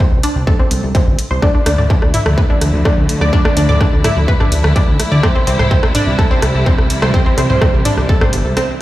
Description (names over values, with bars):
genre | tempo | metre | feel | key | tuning
melodic techno | 126 BPM | 4/4 | straight | unclear | A4 = 440 Hz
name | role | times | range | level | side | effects
analog pluck | arpeggios | 0.0-8.6 s | C4 to D5 | -19 LUFS | equal | wide subtle chorus, sidechain pumping, digital delay
electronic kick drum | drums | 0.0-8.2 s | none | -13 LUFS | equal | distortion, overdrive, small room ambience
fat analog bass | bass | 0.1-8.5 s | G1 to D2 | -15 LUFS | equal | sidechain pumping
techno drum kit | drums | 0.2-8.7 s | hi-hat, rim click, toms | -20 LUFS | equal | overdrive, small room ambience
warm symphonic string section | sustained chords | 1.4-8.8 s | C3 to E4 | -20 LUFS | equal | vintage 12-bit sampler grit, sidechain pumping
room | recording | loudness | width
light reverb, digital ambience | played on a big sound system in a bare room, stone room reverb | -11 LUFS | side -15 dB against mid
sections
0.0-8.8 A section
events
kick drops out 8.6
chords
0.0 C5; 1.4 Dmadd9; 5.2 C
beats
0.00 0.47 0.95 | 1.43 1.90 2.38 2.85 | 3.33 3.81 4.28 4.76 | 5.23 5.71 6.19 6.66 | 7.14 7.62 8.09 8.57